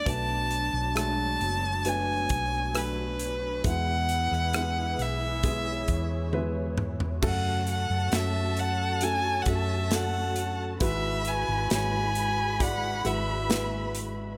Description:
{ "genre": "pop ballad", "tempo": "67 BPM", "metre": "4/4", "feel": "straight", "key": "F# minor", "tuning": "A4 = 440 Hz", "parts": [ { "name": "rich violin", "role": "melody", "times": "0.0-14.0 s", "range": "B4 to A5", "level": "-32 LUFS", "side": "equal", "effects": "none" }, { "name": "felt-muted upright piano", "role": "accompaniment", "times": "0.0-14.4 s", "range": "G#2 to D5", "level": "-36 LUFS", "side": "equal", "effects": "none" }, { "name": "muted studio string section", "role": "sustained chords", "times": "0.0-14.4 s", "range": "E3 to C#5", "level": "-41 LUFS", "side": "equal", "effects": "none" }, { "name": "hollow-body short-scale fingered electric bass", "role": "bass", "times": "0.0-14.4 s", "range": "F#1 to F#2", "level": "-34 LUFS", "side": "equal", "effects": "none" }, { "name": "modern studio drum kit", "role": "drums", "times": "0.1-14.2 s", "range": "crash cymbal, hi-hat, kick drum, rim click, snare drum, toms", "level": "-33 LUFS", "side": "equal", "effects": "none" }, { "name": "warm studio violin section", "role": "second line", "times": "7.2-14.4 s", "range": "A5 to B5", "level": "-40 LUFS", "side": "equal", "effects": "none" } ], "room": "light reverb, studio reverb", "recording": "none", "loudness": "-28 LUFS", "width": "mono", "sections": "0.0-7.2 A section; 7.2-14.4 B section", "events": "drum fill 6.3-7.2", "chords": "0.1 Bm7; 3.6 E; 7.2 F#m; 10.8 Eadd9/G#" }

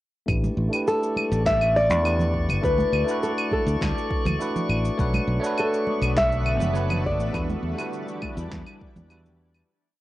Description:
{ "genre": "sunset chillout", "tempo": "102 BPM", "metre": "4/4", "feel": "straight", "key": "unclear", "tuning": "A4 = 440 Hz", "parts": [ { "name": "bell-like tine electric piano", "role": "accompaniment", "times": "0.3-9.7 s", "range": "G3 to C#5", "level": "-30 LUFS", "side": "equal", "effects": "auto-pan, low-pass filter, cassette tape" }, { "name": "fingered electric bass", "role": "bass", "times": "0.3-9.6 s", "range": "F#1 to E2", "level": "-25 LUFS", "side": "equal", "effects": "tube saturation" }, { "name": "electronic claves, shaker and snare drum", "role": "drums", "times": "0.3-9.7 s", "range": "none", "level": "-31 LUFS", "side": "equal", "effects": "overdrive, cassette tape" }, { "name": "electronic kick drum", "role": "drums", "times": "0.3-8.9 s", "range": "none", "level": "-30 LUFS", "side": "equal", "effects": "overdrive, cassette tape" }, { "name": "drifting glass-harmonics texture", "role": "texture", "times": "1.1-9.7 s", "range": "D5 to C#6", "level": "-35 LUFS", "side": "left 2 dB", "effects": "chorus, built-in reverb, cassette tape" }, { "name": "congas", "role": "percussion", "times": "0.4-9.4 s", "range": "none", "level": "-32 LUFS", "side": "right 2 dB", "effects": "none" }, { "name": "nylon-string guitar", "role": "melody", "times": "0.9-9.1 s", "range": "A4 to E5", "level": "-24 LUFS", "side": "equal", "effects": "tape echo" }, { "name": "shimmering ambient pad", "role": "sustained chords", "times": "5.7-9.7 s", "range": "D3 to D4", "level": "-35 LUFS", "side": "equal", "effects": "chorus, built-in reverb, cassette tape" } ], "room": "moderate spring reverb, RT60 1.6 s, digital ambience", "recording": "home recording on cassette, nothing above 10.5 kHz", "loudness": "-21 LUFS", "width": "side -16 dB against mid", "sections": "0.3-9.7 groove", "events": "filter sweep on tine electric piano 0.3-9.7; fade-out 6.6-9.7", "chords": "0.3 A7sus4; 2.6 D69; 5.0 Bm7; 7.3 Em7" }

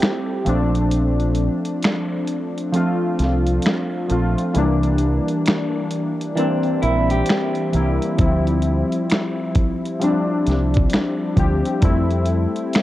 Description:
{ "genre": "lo-fi hip hop", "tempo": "66 BPM", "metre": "4/4", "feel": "swing 63% on 16ths", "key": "D minor", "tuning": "A4 = 441 Hz", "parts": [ { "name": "warbly lo-fi synth keys", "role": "accompaniment", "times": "0.0-12.8 s", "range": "E3 to G4", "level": "-20 LUFS", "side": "left 1 dB", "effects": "chorus, cassette tape" }, { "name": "dusty soul sampler-style drum kit", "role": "drums", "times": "0.0-12.8 s", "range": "finger snaps, hi-hat, kick drum, snare drum", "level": "-21 LUFS", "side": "equal", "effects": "overdrive" }, { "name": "deep dub fingered electric bass", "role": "bass", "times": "0.5-12.5 s", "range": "Bb1 to F2", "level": "-20 LUFS", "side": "equal", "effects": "none" }, { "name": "electric guitar through a small old amp", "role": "second line", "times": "6.4-8.1 s", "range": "D4 to G4", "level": "-24 LUFS", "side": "right 1 dB", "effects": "tape echo" } ], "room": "moderate spring reverb, RT60 2.7 s", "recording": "worn, warbling old tape, cassette tape, warbly pitch drift", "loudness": "-17 LUFS", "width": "side -15 dB against mid", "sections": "0.0-12.8 A section", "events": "break 0.0-8.2", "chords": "0.5 Bbmaj7; 4.6 C9; 8.2 Dm11; 11.8 Fmaj7" }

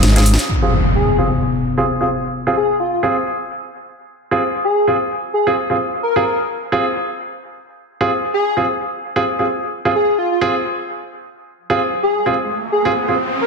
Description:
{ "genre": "bass house", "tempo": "130 BPM", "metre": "4/4", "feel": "swing 57% on 16ths", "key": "F minor", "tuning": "A4 = 440 Hz", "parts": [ { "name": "house drum kit", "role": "drums", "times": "0.0-0.5 s", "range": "hi-hat, snare drum", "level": "-19 LUFS", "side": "equal", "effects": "overdrive" }, { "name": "warm grand piano", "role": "stabs", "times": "0.2-13.1 s", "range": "C4 to Ab4", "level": "-19 LUFS", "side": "right 2 dB", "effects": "low-pass filter, dub echo" }, { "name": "impact and riser", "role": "sound effects", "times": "0.5-2.3, 12.0-13.5 s", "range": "none", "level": "-20 LUFS", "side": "left 1 dB", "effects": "none" }, { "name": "airy dreamy lead", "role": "melody", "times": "1.0-13.5 s", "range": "F4 to Bb4", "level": "-19 LUFS", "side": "left 1 dB", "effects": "chorus, dub echo" } ], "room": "moderate plate reverb, RT60 1.4 s", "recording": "dense, heavily limited modern master", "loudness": "-15 LUFS", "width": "side -4 dB against mid", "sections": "0.5-13.5 A section", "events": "drum fill 0.0-0.5; impact 0.5-2.3; filter sweep on grand piano 0.5-13.5; riser 12.0-13.5", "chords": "0.5 Fm" }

